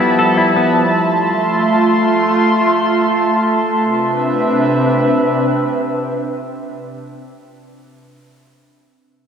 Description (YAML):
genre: dream pop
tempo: free time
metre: none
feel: none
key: C major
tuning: A4 = 439 Hz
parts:
  - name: warbly tape-like pad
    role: sustained chords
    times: 0.0-6.9 s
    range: C3 to C6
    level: -14 LUFS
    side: right 1 dB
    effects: chorus, built-in reverb
  - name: semi-hollow electric guitar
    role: arpeggios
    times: 0.0-1.3 s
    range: F3 to A4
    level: -16 LUFS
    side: left 2 dB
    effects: wide subtle chorus, digital delay
room: wet plate reverb, RT60 2.0 s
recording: bright 1980s-style digital production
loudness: -12 LUFS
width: side -7 dB against mid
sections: 0.0-3.8 A section; 3.8-6.8 B section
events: none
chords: 0.0 G13; 0.7 Fmaj7; 3.8 Cmaj7